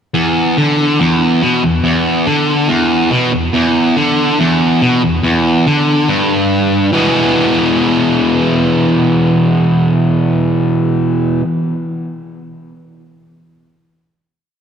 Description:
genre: rock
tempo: 141 BPM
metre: 4/4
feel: straight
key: E major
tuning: A4 = 441 Hz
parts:
  - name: distorted electric guitar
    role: solo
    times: 0.1-11.4 s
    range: E2 to G#4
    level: -11 LUFS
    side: equal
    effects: distortion, tape echo
room: wet lush hall reverb, RT60 2.8 s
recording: big arena sound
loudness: -11 LUFS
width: side -8 dB against mid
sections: 0.1-6.9 riff; 6.9-10.4 final chord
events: none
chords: 0.1 E5; 6.9 E

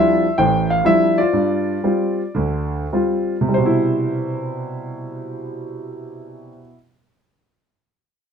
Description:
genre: solo jazz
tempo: 95-134 BPM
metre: 4/4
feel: swing 68% on 8ths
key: C major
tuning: A4 = 440 Hz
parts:
  - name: warm grand piano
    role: solo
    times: 0.0-6.7 s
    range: A1 to G5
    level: -17 LUFS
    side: equal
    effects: none
room: light reverb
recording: minimal, uncompressed stereo recording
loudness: -16 LUFS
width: side -7 dB against mid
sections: 0.0-3.5 A section; 3.5-8.3 B section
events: slowing down 0.0-3.5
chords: 0.0 Dm11; 1.3 G7sus4; 3.5 Cmaj7

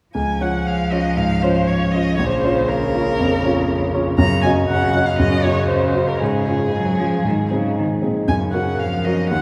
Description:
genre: quick classical-period movement for piano trio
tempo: 119 BPM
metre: 4/4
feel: straight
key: Db major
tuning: A4 = 440 Hz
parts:
  - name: rich violin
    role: melody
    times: 0.1-9.4 s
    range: Ab4 to Bb5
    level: -25 LUFS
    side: equal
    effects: none
  - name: warm grand piano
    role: accompaniment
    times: 0.1-9.4 s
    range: Bb1 to Eb5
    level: -21 LUFS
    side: equal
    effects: none
  - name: rich cello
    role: second line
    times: 0.2-9.4 s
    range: Bb2 to Gb3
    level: -24 LUFS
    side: equal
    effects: none
room: wet cathedral reverb, RT60 4.5 s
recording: recorded in a church or concert hall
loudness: -19 LUFS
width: mono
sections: 0.1-9.4 A section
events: none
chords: 0.1 Db; 2.2 Bbm; 4.2 Ebm7/Gb; 6.2 Db/Ab; 7.2 Ab; 8.3 Gb

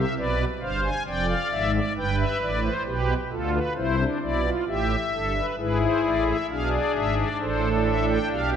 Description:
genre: classical, baroque-style 4-part fugue for pipe organ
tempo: 66 BPM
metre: 4/4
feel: straight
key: unclear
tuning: A4 = 440 Hz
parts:
  - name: pipe organ, strings celeste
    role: solo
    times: 0.0-8.6 s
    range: F1 to G#5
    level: -22 LUFS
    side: equal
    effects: none
room: wet scoring stage reverb, RT60 1.7 s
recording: none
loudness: -22 LUFS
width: side -8 dB against mid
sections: 0.0-5.6 A section; 5.6-8.6 B section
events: none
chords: 0.2 Bdim7; 2.0 G7; 5.6 E7/G#; 7.4 Am

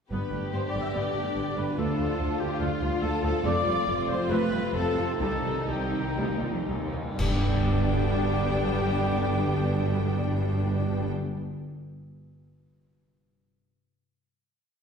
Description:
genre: cinematic, heroic adventure film score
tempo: 114-146 BPM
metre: 4/4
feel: straight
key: G mixolydian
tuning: A4 = 440 Hz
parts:
  - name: warm symphonic violin section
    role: melody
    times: 0.1-11.1 s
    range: D4 to G4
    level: -34 LUFS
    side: left 4 dB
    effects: none
  - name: clear symphonic violin section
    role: second line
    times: 0.1-11.1 s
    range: F4 to G5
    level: -37 LUFS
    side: left 2 dB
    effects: none
  - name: mellow clarinet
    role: second line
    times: 0.1-11.1 s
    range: F4 to E5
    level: -37 LUFS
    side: left 1 dB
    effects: none
  - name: small flute group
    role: second line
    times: 0.1-11.1 s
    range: F5 to E6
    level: -37 LUFS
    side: equal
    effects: none
  - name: warm oboe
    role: second line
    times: 0.1-11.1 s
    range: F4 to E5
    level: -38 LUFS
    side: right 1 dB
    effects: none
  - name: warm symphonic viola section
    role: accompaniment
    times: 0.1-11.1 s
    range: Eb3 to D4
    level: -35 LUFS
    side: right 2 dB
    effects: none
  - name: dark French horn section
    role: sustained chords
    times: 0.1-11.1 s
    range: G3 to G4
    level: -38 LUFS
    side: left 2 dB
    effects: none
  - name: warm trombone section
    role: sustained chords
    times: 0.1-11.1 s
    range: C3 to G3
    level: -36 LUFS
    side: right 4 dB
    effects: none
  - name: concert harp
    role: arpeggios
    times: 0.1-11.4 s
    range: G2 to D5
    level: -37 LUFS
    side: left 3 dB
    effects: none
  - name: rich symphonic cello section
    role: bass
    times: 0.1-11.1 s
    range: C2 to G2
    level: -34 LUFS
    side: right 2 dB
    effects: none
  - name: rich symphonic double bass section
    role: bass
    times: 0.1-11.1 s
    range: F1 to D2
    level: -34 LUFS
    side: right 2 dB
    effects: none
  - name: timpani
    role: percussion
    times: 0.1-2.4, 7.2-11.1 s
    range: G2 to D3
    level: -32 LUFS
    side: left 1 dB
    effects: none
  - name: cymbal swell, clash cymbals and concert bass drum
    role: percussion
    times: 3.4-8.2 s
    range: none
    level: -34 LUFS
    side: equal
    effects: none
room: wet scoring stage reverb, RT60 1.7 s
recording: heard from further back in the room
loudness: -25 LUFS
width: side -6 dB against mid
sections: 0.1-7.2 theme; 7.2-11.4 final chord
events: slowing down 2.6-7.2; band accent 7.2-7.7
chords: 0.1 G; 1.8 Dm; 3.4 F; 5.2 Cm; 7.2 G

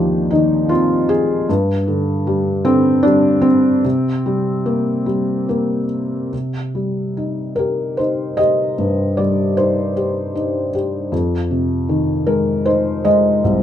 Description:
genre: classical, lyrical solo piano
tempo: 71-79 BPM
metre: 3/4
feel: rubato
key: C minor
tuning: A4 = 438 Hz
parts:
  - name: felt-muted upright piano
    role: solo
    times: 0.0-13.6 s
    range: C2 to Eb5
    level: -15 LUFS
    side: equal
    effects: none
room: light reverb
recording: dark, warm production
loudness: -15 LUFS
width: side -10 dB against mid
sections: 0.0-6.3 A section; 6.3-13.6 B section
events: none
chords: 0.0 Ab6; 1.5 Gsus4; 3.8 C5; 6.3 Cm; 11.1 Fm7

